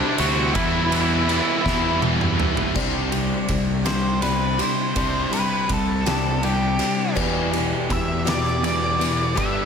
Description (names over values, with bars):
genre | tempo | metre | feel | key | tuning
quiet-loud alternative rock | 54 BPM (dotted quarters) | 6/8 | straight | unclear | A4 = 440 Hz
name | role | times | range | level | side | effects
octave-fuzz lead guitar | melody | 0.0-9.7 s | D4 to F#5 | -25 LUFS | left 1 dB | distortion, slapback echo
high-gain distorted guitar | riff | 0.0-9.7 s | E2 to E4 | -27 LUFS | left 10 dB | distortion, slapback echo
scooped high-gain guitar | riff | 0.0-2.7 s | E2 to C4 | -28 LUFS | equal | distortion, slapback echo
sludgy distorted guitar | riff | 0.0-9.7 s | E2 to E4 | -28 LUFS | right 10 dB | overdrive, slapback echo
fuzz fingered electric bass | bass | 0.2-9.7 s | C2 to G2 | -26 LUFS | equal | overdrive
oversized low-tuned drum kit | drums | 0.2-9.5 s | crash cymbal, kick drum, ride cymbal, snare drum, toms | -25 LUFS | right 1 dB | none
picked swing-style acoustic guitar | arpeggios | 2.7-9.7 s | E2 to G4 | -29 LUFS | left 4 dB | slapback echo
room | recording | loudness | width
moderate lush hall reverb, RT60 2.8 s | big arena sound | -19 LUFS | side -6 dB against mid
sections
0.0-2.8 A section; 2.8-9.7 B section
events
drum fill 1.6-2.8; lead electric guitar solo 2.8-9.7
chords
0.0 Cadd9; 0.5 Em; 2.8 Csus2; 7.2 Em